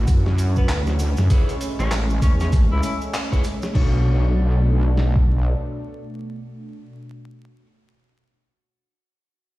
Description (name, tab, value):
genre	glitch hop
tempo	98 BPM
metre	4/4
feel	swing 61% on 16ths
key	B dorian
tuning	A4 = 440 Hz
part	warm analog pad	sustained chords	0.0-7.0 s	B2 to F#4	-29 LUFS	equal	chorus, sidechain pumping
part	electric guitar at the edge of break-up	stabs	0.0-7.7 s	D4 to C#5	-33 LUFS	left 2 dB	spring reverb, sidechain pumping, ping-pong delay
part	wobble bass	bass	0.0-5.5 s	A1 to F#2	-18 LUFS	equal	chorus, tube saturation
part	boom bap sampler-style drum kit	drums	0.1-5.3 s	kick drum, snare drum	-19 LUFS	equal	none
part	boom bap sampler-style drum kit	drums	0.1-3.9 s	crash cymbal, handclaps, hi-hat, snare drum	-31 LUFS	equal	none
part	maracas	percussion	0.1-3.7 s	none	-40 LUFS	right 3 dB	none
part	clear tenor saxophone	melody	0.6-3.0 s	B3 to E4	-32 LUFS	left 1 dB	ping-pong delay
room	little or no reverb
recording	played on a big sound system in a bare room, stone room reverb, vinyl crackle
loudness	-17 LUFS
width	side -18 dB against mid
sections	0.0-3.7 A section; 3.7-6.2 B section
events	drop 0.0-3.7; band accent 3.1-3.4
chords	0.0 Dmaj7; 1.3 Amaj7; 3.7 Bm7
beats	0.08 0.69 | 1.30 1.91 2.52 3.14 | 3.75 4.36 4.97 5.59